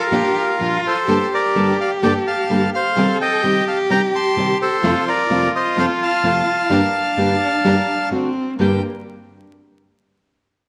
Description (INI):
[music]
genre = tango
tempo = 128 BPM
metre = 4/4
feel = rubato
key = G minor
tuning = A4 = 440 Hz
[part]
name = bandoneon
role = melody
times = 0.0-8.8 s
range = F4 to C6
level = -21 LUFS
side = equal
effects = none
[part]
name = warm cello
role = second line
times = 0.0-8.8 s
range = Bb3 to A4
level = -24 LUFS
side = equal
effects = none
[part]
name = nylon-string guitar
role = accompaniment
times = 0.1-8.8 s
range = F2 to A4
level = -23 LUFS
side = equal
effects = none
[part]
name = rich chamber string section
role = stabs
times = 0.1-8.8 s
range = Bb3 to C5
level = -31 LUFS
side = equal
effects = slapback echo
[sound]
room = moderate scoring stage reverb, RT60 1.7 s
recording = vinyl crackle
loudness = -18 LUFS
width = mono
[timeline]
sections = 0.0-8.6 A section; 8.6-10.5 B section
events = none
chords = 0.1 Bb; 1.1 Gmadd9; 3.0 Cm; 4.8 F; 6.7 Gm; 8.1 D7; 8.6 Gm